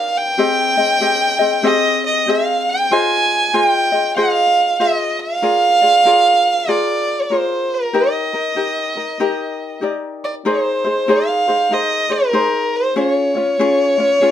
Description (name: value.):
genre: Hawaiian.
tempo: 95 BPM.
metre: 4/4.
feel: swing 63% on 8ths.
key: Eb major, Ab major from 10.5 s.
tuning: A4 = 443 Hz.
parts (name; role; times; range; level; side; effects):
dark violin; melody; 0.0-14.3 s; Bb4 to Ab5; -15 LUFS; right 1 dB; none.
ukulele; accompaniment; 0.0-14.3 s; C4 to Eb5; -19 LUFS; left 3 dB; none.
room: moderate studio reverb, RT60 0.5 s.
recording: none.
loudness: -14 LUFS.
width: side -10 dB against mid.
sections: 0.0-10.5 A section; 10.5-14.3 B section.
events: none.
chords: 0.4 Abmaj7; 2.9 Fm7; 5.4 Bb7; 7.9 Ebmaj7; 10.5 Abadd9; 13.0 Db.